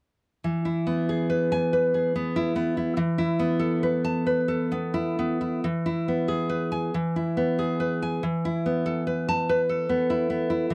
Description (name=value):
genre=romantic piece for solo classical guitar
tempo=42-50 BPM (dotted quarters)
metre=6/8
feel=rubato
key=E major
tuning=A4 = 445 Hz
part: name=nylon-string guitar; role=solo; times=0.4-10.7 s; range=E3 to A5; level=-26 LUFS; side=equal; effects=none
room=little or no reverb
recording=dry, close 1970s-style studio recording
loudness=-26 LUFS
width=mono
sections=0.4-5.6 A section; 5.6-10.7 B section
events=none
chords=0.4 E; 3.0 Esus4; 5.6 E; 8.2 Esus4